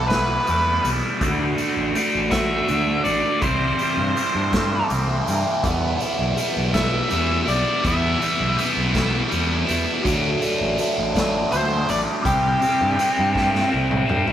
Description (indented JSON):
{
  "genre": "psychedelic rock",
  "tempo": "54 BPM (dotted quarters)",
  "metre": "6/8",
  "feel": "straight",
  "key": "E minor",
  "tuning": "A4 = 442 Hz",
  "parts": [
    { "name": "octave-fuzz lead guitar", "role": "melody", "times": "0.0-13.7 s", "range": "G4 to E5", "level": "-24 LUFS", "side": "equal", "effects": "distortion, analog delay" },
    { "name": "biting overdriven guitar", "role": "riff", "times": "0.0-14.3 s", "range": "C3 to F#4", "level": "-21 LUFS", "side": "equal", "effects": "phaser" },
    { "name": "fuzz fingered electric bass", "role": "bass", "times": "0.0-14.2 s", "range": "A1 to G2", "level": "-25 LUFS", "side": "equal", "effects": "overdrive" },
    { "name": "raw garage drum kit", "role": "drums", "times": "0.1-14.3 s", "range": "hi-hat, kick drum, snare drum, toms", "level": "-28 LUFS", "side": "equal", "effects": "none" }
  ],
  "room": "wet studio reverb, RT60 0.5 s",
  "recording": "rough rehearsal-room recording",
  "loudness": "-18 LUFS",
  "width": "side -10 dB against mid",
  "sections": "0.0-14.3 A section",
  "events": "drum fill 13.4-14.3",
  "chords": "0.0 Em; 1.2 D; 3.4 C; 5.6 Em; 10.0 D; 12.3 C",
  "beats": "0.11 | 1.22 2.32 | 3.43 4.53 | 5.64 6.74 | 7.84 8.95 | 10.05 11.15 | 12.25 13.35"
}